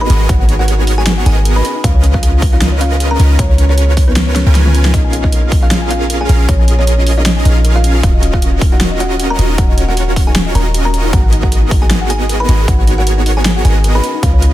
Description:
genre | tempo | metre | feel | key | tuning
future bass | 155 BPM | 4/4 | swing 55% on 16ths, half-time | unclear | A4 = 440 Hz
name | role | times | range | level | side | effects
buzzing kalimba | melody | 0.0-14.5 s | F3 to Cb6 | -21 LUFS | right 1 dB | sidechain pumping, digital delay
thumb-piano-like synth pluck | arpeggios | 0.0-14.5 s | Db4 to Ab5 | -24 LUFS | left 4 dB | chorus, sidechain pumping, digital delay
supersaw chords | riff | 0.0-14.5 s | Cb4 to Ab5 | -19 LUFS | right 2 dB | sidechain pumping
warm 808-style bass | bass | 0.0-14.5 s | Eb1 to Db2 | -12 LUFS | equal | sidechain pumping
big-room dance drum kit | drums | 0.1-14.5 s | hi-hat, snare drum, toms | -19 LUFS | equal | overdrive, studio reverb
electronic kick drum | drums | 0.3-14.3 s | none | -12 LUFS | equal | overdrive, studio reverb
room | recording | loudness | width
little or no reverb | dense, heavily limited modern master | -9 LUFS | side -14 dB against mid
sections
0.0-14.5 A section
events
drum fill 4.4-4.9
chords
0.0 Abm9; 1.6 Db13; 4.9 Bbm7; 8.0 Ebm9; 11.1 Abm9

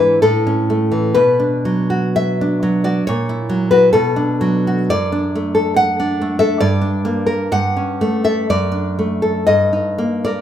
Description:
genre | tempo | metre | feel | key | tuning
romantic piece for solo classical guitar | 54-72 BPM | 2/4 | rubato | D major from 4.9 s | A4 = 440 Hz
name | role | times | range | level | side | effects
nylon-string guitar | solo | 0.0-10.4 s | F#2 to F#5 | -14 LUFS | equal | none
room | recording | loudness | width
moderate recital hall reverb, RT60 1.4 s | minimal, uncompressed stereo recording | -14 LUFS | side -10 dB against mid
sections
0.0-10.4 A section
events
none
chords
0.3 A; 1.2 Bm; 3.1 F#7/A#; 3.9 Bm7; 4.9 D/F#; 6.6 Gm; 7.5 A7/G; 8.5 D/F#; 9.5 Eb/G

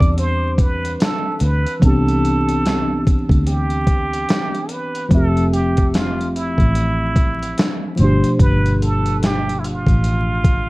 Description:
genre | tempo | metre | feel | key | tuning
lo-fi hip hop | 73 BPM | 4/4 | swing 62% on 16ths | C major | A4 = 440 Hz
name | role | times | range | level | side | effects
trumpet with plunger mute | melody | 0.0-10.7 s | E4 to D5 | -24 LUFS | right 2 dB | low-pass filter, analog delay
mellow tine electric piano | accompaniment | 0.0-10.7 s | B2 to E5 | -21 LUFS | equal | medium stereo tremolo, cassette tape, low-pass filter
vintage muted fingered electric bass | bass | 0.0-10.7 s | F1 to E2 | -19 LUFS | equal | none
dusty soul sampler-style drum kit | drums | 0.0-10.7 s | hi-hat, kick drum, snare drum | -18 LUFS | equal | none
room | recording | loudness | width
light reverb | dark, warm production, vinyl crackle | -15 LUFS | side -21 dB against mid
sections
0.0-10.7 A section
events
none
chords
0.0 Cmaj9; 5.1 Fmaj7; 8.0 G7

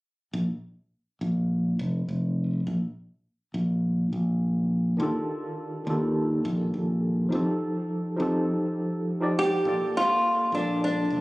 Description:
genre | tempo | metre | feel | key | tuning
sunset chillout | 103 BPM | 4/4 | straight | Bb major | A4 = 439 Hz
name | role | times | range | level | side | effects
modern bright fingered electric bass | bass | 0.3-11.2 s | F1 to F2 | -25 LUFS | equal | none
tine electric piano | accompaniment | 5.0-11.2 s | Eb3 to D5 | -28 LUFS | equal | medium tremolo, auto-pan, ping-pong delay
flamenco guitar | melody | 9.4-11.2 s | D4 to G4 | -23 LUFS | equal | none
room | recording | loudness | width
moderate lush hall reverb, RT60 2.6 s | recorded on a phone in the room, studio reverb, compression, nothing above 10.3 kHz | -24 LUFS | side -21 dB against mid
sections
0.3-9.7 A section; 9.7-11.2 B section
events
none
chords
0.3 Bb5; 5.0 Ebmaj9#11; 7.3 F9; 9.7 Bbmaj7

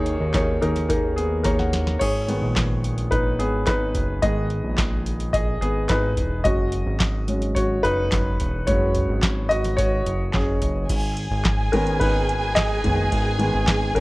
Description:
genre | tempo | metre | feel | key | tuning
piano-driven pop | 108 BPM | 4/4 | straight | G# minor | A4 = 440 Hz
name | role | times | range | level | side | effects
clear concert grand piano | accompaniment | 0.0-14.0 s | D#3 to A#5 | -23 LUFS | left 1 dB | none
fat analog bass | bass | 0.0-14.0 s | E1 to D#2 | -25 LUFS | equal | none
booming analog drum machine | drums | 0.1-14.0 s | crash cymbal, handclaps, hi-hat, kick drum, ride cymbal, snare drum, toms | -25 LUFS | equal | none
warm studio violin section | second line | 10.9-14.0 s | G#4 to G#5 | -25 LUFS | right 1 dB | none
room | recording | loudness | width
digital ambience | worn, warbling old tape, cassette tape, warbly pitch drift | -19 LUFS | side -21 dB against mid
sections
0.0-2.0 A section; 2.0-10.9 B section; 10.9-14.0 C section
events
grand piano fill 1.2-2.0; drum fill 1.5-2.0; grand piano solo 2.0-10.9, 10.9-14.0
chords
0.0 D#sus4; 2.0 G#m; 6.5 F#sus2; 10.9 G#m

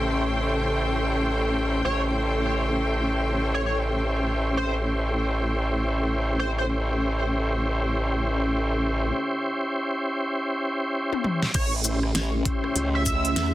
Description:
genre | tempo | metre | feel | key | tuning
glitch hop | 99 BPM | 4/4 | swing 61% on 16ths | unclear | A4 = 440 Hz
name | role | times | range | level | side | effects
dark analog pad | sustained chords | 0.0-13.5 s | A3 to B#5 | -33 LUFS | equal | chorus, phaser, sidechain pumping
tonewheel organ | stabs | 0.0-13.0 s | C#4 to B#4 | -27 LUFS | equal | chorus vibrato, sidechain pumping, digital delay
formant-sweep wobble bass | bass | 0.0-13.5 s | A1 to E2 | -26 LUFS | equal | chorus
rich studio string section | texture | 0.0-13.5 s | C#4 to B#5 | -31 LUFS | left 1 dB | sidechain pumping
sync lead | melody | 1.8-6.7, 11.5-13.5 s | B#4 to E5 | -31 LUFS | right 1 dB | analog chorus, digital delay
pop drum kit | drums | 11.1-13.5 s | crash cymbal, hi-hat, rim click, shaker, snare drum, toms | -26 LUFS | left 1 dB | none
electronic kick drum | drums | 11.5-13.2 s | none | -27 LUFS | equal | none
room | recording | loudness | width
light reverb | dense, heavily limited modern master | -22 LUFS | side -15 dB against mid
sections
0.0-11.5 A section; 11.5-13.5 B section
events
drum fill 11.1-11.5; drop 11.5-13.5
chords
0.0 A7#9

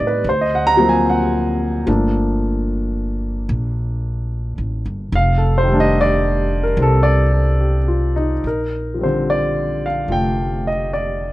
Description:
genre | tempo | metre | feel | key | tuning
jazz ballad | 73 BPM | 4/4 | swing 68% on 8ths | Bb major | A4 = 438 Hz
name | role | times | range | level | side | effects
warm baby grand piano | accompaniment | 0.0-11.3 s | D3 to A#5 | -17 LUFS | equal | none
upright bass | bass | 0.0-11.3 s | F1 to A2 | -20 LUFS | equal | none
room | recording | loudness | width
little or no reverb | dry, close 1970s-style studio recording | -16 LUFS | side -17 dB against mid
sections
0.0-8.4 A section; 8.4-11.3 B section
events
none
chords
0.2 D7alt; 1.9 Gm9; 5.1 F13

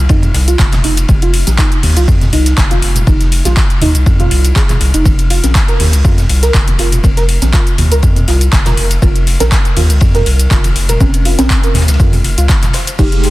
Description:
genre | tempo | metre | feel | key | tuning
deep house | 121 BPM | 4/4 | swing 54% on 16ths | unclear | A4 = 441 Hz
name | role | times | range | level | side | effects
round analog bass | bass | 0.0-13.3 s | F1 to F2 | -12 LUFS | equal | tube saturation
soft round pluck | arpeggios | 0.1-13.1 s | Eb4 to C5 | -20 LUFS | right 3 dB | ensemble chorus, sidechain pumping, analog delay
deep house drum kit | drums | 0.1-13.3 s | cabasa, crash cymbal, handclaps, hi-hat | -18 LUFS | left 1 dB | overdrive, studio reverb
electronic kick drum | drums | 0.1-13.1 s | none | -12 LUFS | equal | overdrive, studio reverb
vintage drum kit | drums | 0.1-13.3 s | hi-hat, ride cymbal, snare drum | -25 LUFS | left 3 dB | sidechain pumping on cymbals, high-pass filter on cymbals, studio reverb, sidechain pumping on hats, high-pass filter on hats, high-pass filter on snare, high-pass filter on room
congas | percussion | 0.2-13.1 s | none | -23 LUFS | right 2 dB | none
filtered dub chord stab | stabs | 1.1-13.3 s | Ab3 to Bb4 | -20 LUFS | right 1 dB | phaser, wide subtle chorus, cassette tape, sidechain pumping, analog delay
soft string machine | sustained chords | 13.1-13.3 s | Ab3 to G4 | -17 LUFS | right 3 dB | ensemble chorus, sidechain pumping
analog string pad | texture | 13.0-13.3 s | C6 | -34 LUFS | left 1 dB | none
room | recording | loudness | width
small room reverb | dense, heavily limited modern master | -8 LUFS | side -18 dB against mid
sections
0.0-13.3 A section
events
filter sweep on synth stab 0.0-13.3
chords
0.0 Fm9; 5.1 Bbmadd9/F

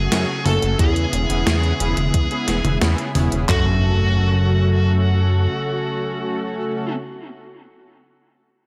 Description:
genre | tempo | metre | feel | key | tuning
synthwave | 89 BPM | 4/4 | straight | F# minor | A4 = 440 Hz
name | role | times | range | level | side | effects
smooth overdriven lead guitar | melody | 0.0-6.9 s | F#4 to A4 | -28 LUFS | equal | vintage 12-bit sampler grit, tape echo
analog string pad | sustained chords | 0.0-6.9 s | C#3 to F#4 | -29 LUFS | equal | ensemble chorus, sidechain pumping
chorused synth bass | bass | 0.0-5.5 s | E1 to F#2 | -21 LUFS | equal | tube saturation
analog synth brass | stabs | 0.1-6.9 s | A3 to A4 | -29 LUFS | equal | chorus
gated 80s digital drum machine | drums | 0.1-3.5 s | hi-hat, snare drum, toms | -26 LUFS | equal | gated reverb, gated reverb snare
gated 80s digital drum machine | drums | 0.8-3.6 s | handclaps, kick drum | -22 LUFS | equal | gated reverb
impact | sound effects | 3.5-7.7 s | none | -30 LUFS | equal | none
room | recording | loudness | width
light reverb | none | -19 LUFS | mono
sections
0.0-3.5 A section; 3.5-6.2 B section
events
none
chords
0.0 F#m; 0.8 E6; 3.5 F#m

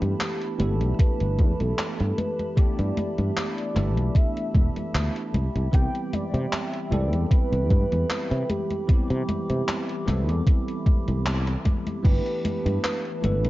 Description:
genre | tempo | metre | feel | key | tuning
vaporwave | 76 BPM | 4/4 | swing 53% on 16ths | G major | A4 = 440 Hz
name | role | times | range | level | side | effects
warm velvety synth lead | melody | 0.0-13.5 s | G4 to G5 | -32 LUFS | right 1 dB | chorus, analog delay
bell-like tine electric piano | accompaniment | 0.0-13.5 s | E3 to A4 | -31 LUFS | equal | slow stereo tremolo, analog chorus, analog delay
warbly tape-like pad | sustained chords | 0.0-13.5 s | G4 to D6 | -38 LUFS | right 2 dB | chorus, built-in reverb
sustaining fretless electric bass | bass | 0.0-13.5 s | E1 to C3 | -24 LUFS | equal | none
gated 80s digital drum machine | drums | 0.0-13.5 s | congas, crash cymbal, handclaps, hi-hat | -31 LUFS | left 1 dB | gated reverb, overdrive
electronic kick drum | drums | 1.0-12.2 s | none | -20 LUFS | equal | overdrive
room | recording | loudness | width
light reverb, digital ambience | dark, warm production, cassette tape, nothing above 7.5 kHz | -22 LUFS | side -17 dB against mid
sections
0.0-12.0 A section; 12.0-13.5 B section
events
band accent 11.3-11.7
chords
0.0 G69; 5.3 Cmaj7; 12.0 G69

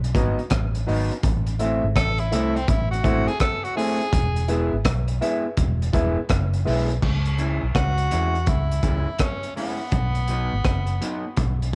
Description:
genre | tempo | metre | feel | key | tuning
roots reggae | 83 BPM | 4/4 | swing 64% on 16ths | unclear | A4 = 440 Hz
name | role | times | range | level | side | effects
vintage muted fingered electric bass | bass | 0.0-11.7 s | E1 to E2 | -26 LUFS | equal | none
crunchy breakbeat drum kit | drums | 0.0-11.7 s | crash cymbal, hi-hat, kick drum, rim click | -27 LUFS | equal | none
electric guitar at the edge of break-up | accompaniment | 0.1-11.2 s | F#3 to E4 | -32 LUFS | equal | cassette tape, tape echo
dark grand piano | stabs | 0.1-6.9 s | D#4 to E5 | -30 LUFS | equal | cassette tape, plate reverb
breathy tenor saxophone | melody | 2.0-11.7 s | B3 to A4 | -30 LUFS | equal | cassette tape, tape echo, plate reverb
room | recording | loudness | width
light reverb | home recording on cassette | -23 LUFS | mono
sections
0.0-7.0 A section; 7.0-11.8 B section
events
tenor saxophone solo 0.0-7.0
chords
0.0 B; 1.2 Am; 4.1 E; 7.0 C#m; 9.9 B

